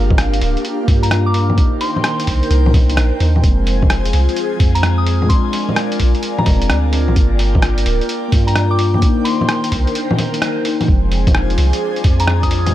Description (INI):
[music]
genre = future garage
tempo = 129 BPM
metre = 4/4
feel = swing 66% on 16ths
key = unclear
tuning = A4 = 441 Hz
[part]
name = muted felt-like synth keys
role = accompaniment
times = 0.0-12.7 s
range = F3 to F4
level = -22 LUFS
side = left 1 dB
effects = chorus, phaser, sidechain pumping, tape echo
[part]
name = airy breathy pad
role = sustained chords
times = 0.0-12.7 s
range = Eb3 to Ab5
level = -23 LUFS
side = left 1 dB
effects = chorus, phaser, sidechain pumping
[part]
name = soft 808-style bass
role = bass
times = 0.0-12.7 s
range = D1 to G2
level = -15 LUFS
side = equal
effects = sidechain pumping
[part]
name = electronic kick drum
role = drums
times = 0.1-12.5 s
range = none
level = -14 LUFS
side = equal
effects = overdrive
[part]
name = lo-fi sampler-style drum kit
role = drums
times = 0.1-12.7 s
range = bongos, hi-hat, rim click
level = -21 LUFS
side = equal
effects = overdrive
[part]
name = soft synth bell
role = melody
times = 1.0-12.7 s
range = Bb5 to Eb6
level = -24 LUFS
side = left 2 dB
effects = chorus, tape echo
[part]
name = wind-like tuned noise texture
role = texture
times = 11.2-12.7 s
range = D4 to D5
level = -31 LUFS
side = equal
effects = built-in reverb
[sound]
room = light reverb, digital ambience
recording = none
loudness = -13 LUFS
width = side -13 dB against mid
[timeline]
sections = 0.0-10.9 A section; 10.9-12.7 A section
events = break 10.0-10.9; band accent 10.4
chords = 0.0 Gm7; 1.6 Cm7; 3.4 Fm; 5.3 Bb7; 7.2 Gm7; 9.0 Cm7; 10.9 Fm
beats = 0.19 0.65 1.12 | 1.58 2.05 2.51 2.98 | 3.44 3.91 4.37 4.84 | 5.30 5.77 6.23 6.70 | 7.16 7.63 8.09 8.56 | 9.02 9.49 9.95 10.42 | 10.88 11.35 11.81 12.28 | 12.74